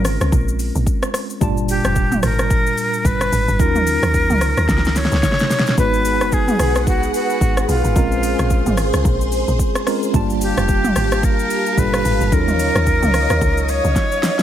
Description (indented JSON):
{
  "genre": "amapiano",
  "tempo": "110 BPM",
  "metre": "4/4",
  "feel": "swing 58% on 16ths",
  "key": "unclear",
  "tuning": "A4 = 440 Hz",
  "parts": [
    { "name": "tine electric piano", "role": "accompaniment", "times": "0.0-14.4 s", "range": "Bb2 to A5", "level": "-23 LUFS", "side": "right 1 dB", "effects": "medium stereo tremolo" },
    { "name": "deep log drum bass", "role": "bass", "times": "0.0-13.9 s", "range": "F1 to D#2", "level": "-20 LUFS", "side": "equal", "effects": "none" },
    { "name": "deep house drum kit", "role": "drums", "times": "0.0-14.4 s", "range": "hi-hat, kick drum, rim click, shaker, snare drum, toms", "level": "-20 LUFS", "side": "equal", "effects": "overdrive" },
    { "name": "breathy bright jazz flute", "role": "melody", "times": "1.7-14.4 s", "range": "E#4 to C#5", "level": "-21 LUFS", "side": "equal", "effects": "ping-pong delay" },
    { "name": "string machine, violas", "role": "sustained chords", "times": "5.8-14.4 s", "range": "G4 to D#6", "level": "-23 LUFS", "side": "equal", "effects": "ensemble chorus, sidechain pumping" }
  ],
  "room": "digital ambience",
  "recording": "none",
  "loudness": "-15 LUFS",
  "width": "side -11 dB against mid",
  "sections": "0.0-14.4 A section",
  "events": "drum fill 4.7-5.8, 14.0-14.4",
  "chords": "0.0 A#m9; 1.4 Gm9; 3.6 D#m9; 5.8 G#m7; 8.0 A#m9; 10.1 Gm9; 12.3 D#m9",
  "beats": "0.32 0.87 | 1.41 1.96 2.50 3.05 | 3.60 4.14 4.69 5.23 | 5.78 6.32 6.87 7.41 | 7.96 8.51 9.05 9.60 | 10.14 10.69 11.23 11.78 | 12.32 12.87 13.41 13.96"
}